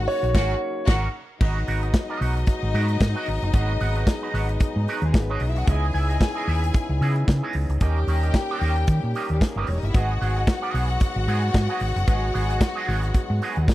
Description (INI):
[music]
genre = disco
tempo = 112 BPM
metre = 4/4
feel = swing 56% on 16ths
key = G# minor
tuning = A4 = 440 Hz
[part]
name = clear studio string section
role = second line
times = 0.0-13.7 s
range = G3 to G#5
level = -30 LUFS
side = left 4 dB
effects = none
[part]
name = mellow French horn section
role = sustained chords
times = 0.0-13.7 s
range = C#3 to G#4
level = -33 LUFS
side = left 1 dB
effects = none
[part]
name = hollow-body short-scale fingered electric bass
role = bass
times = 0.0-13.7 s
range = E1 to D#3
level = -23 LUFS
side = equal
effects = none
[part]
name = warm grand piano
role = melody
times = 0.1-0.8 s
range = C#5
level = -25 LUFS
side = right 1 dB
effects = none
[part]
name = modern studio drum kit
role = drums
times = 0.1-13.7 s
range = crash cymbal, hi-hat, kick drum, snare drum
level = -20 LUFS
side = equal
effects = none
[part]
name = electric guitar with an envelope filter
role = accompaniment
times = 0.2-13.7 s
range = B3 to F#5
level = -31 LUFS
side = right 5 dB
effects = wah, spring reverb
[sound]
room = little or no reverb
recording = dry, close 1970s-style studio recording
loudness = -20 LUFS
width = side -16 dB against mid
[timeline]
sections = 0.0-1.4 A section; 1.4-13.7 B section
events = band accent 0.3-1.4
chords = 0.0 D#m7/G#; 1.4 G#m7; 5.7 C#m9; 7.8 D#7; 9.9 G#m7